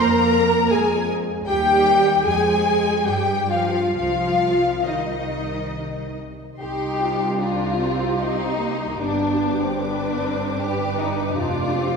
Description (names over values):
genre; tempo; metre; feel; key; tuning
classical, slow romantic movement for string orchestra; 64-80 BPM; 3/4; rubato; C minor; A4 = 442 Hz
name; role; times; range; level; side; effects
warm symphonic violin section; melody; 0.0-12.0 s; Eb5 to D6; -27 LUFS; left 4 dB; none
warm symphonic violin section; second line; 0.0-12.0 s; C4 to Bb5; -24 LUFS; left 3 dB; none
warm studio viola section; accompaniment; 0.0-12.0 s; Bb3 to B4; -23 LUFS; right 1 dB; none
clear symphonic cello section; bass; 0.0-12.0 s; C2 to Bb3; -28 LUFS; right 2 dB; none
rich symphonic double bass section; bass; 0.0-12.0 s; F1 to G2; -28 LUFS; right 2 dB; none
room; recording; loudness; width
wet scoring stage reverb, RT60 2.0 s; minimal, uncompressed stereo recording; -18 LUFS; side -5 dB against mid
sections
0.0-6.6 A section; 6.6-12.0 B section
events
none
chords
0.0 Fm; 1.5 Eb; 2.3 Fm; 3.1 Fsus2/G; 4.0 Cm; 9.0 G; 11.4 G7(no3)/F